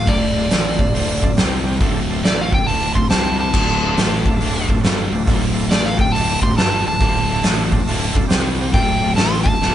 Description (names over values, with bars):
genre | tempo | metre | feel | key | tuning
blues rock power trio and southern rock | 138 BPM | 4/4 | swing 65% on 8ths | D minor | A4 = 440 Hz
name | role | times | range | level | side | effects
overdriven slide guitar | melody | 0.0-9.7 s | D5 to C6 | -21 LUFS | equal | none
overdriven tonewheel organ | sustained chords | 0.0-9.7 s | G3 to C5 | -29 LUFS | right 3 dB | none
overdriven electric guitar | riff | 0.0-9.7 s | D2 to C4 | -22 LUFS | left 1 dB | none
fuzz fingered electric bass | bass | 0.0-9.7 s | D1 to C2 | -23 LUFS | equal | overdrive
oversized low-tuned drum kit | drums | 0.1-9.7 s | crash cymbal, hi-hat, kick drum, snare drum | -18 LUFS | equal | none
room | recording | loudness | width
light reverb | band playing live in one room, nothing above 10.7 kHz | -15 LUFS | side -11 dB against mid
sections
0.0-9.7 A section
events
electric slide guitar solo 0.0-9.7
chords
0.0 Dm; 1.4 C5; 1.8 Dm; 3.1 C5; 3.6 Dm; 8.3 C5; 8.8 Dm